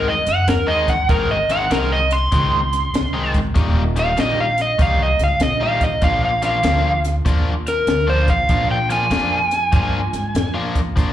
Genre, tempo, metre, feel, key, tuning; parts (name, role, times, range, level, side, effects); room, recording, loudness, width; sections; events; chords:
electric blues shuffle; 97 BPM; 4/4; swing 66% on 8ths; A4 = 440 Hz
overdriven slide guitar; melody; 0.0-10.7 s; Bb4 to C6; -19 LUFS; right 1 dB; plate reverb, slapback echo
crunchy overdriven guitar; riff; 0.0-11.1 s; Eb3 to F4; -25 LUFS; left 4 dB; spring reverb, slapback echo
upright bass; bass; 0.0-11.1 s; Eb1 to Ab2; -21 LUFS; equal
compact cocktail drum kit; drums; 0.3-11.1 s; hi-hat, kick drum, snare drum; -21 LUFS; equal
light reverb; live gig heard through the venue's PA, club reverb; -15 LUFS; side -12 dB against mid
0.0-11.1 A section
0.0 Ab; 3.6 Eb; 6.0 Bb7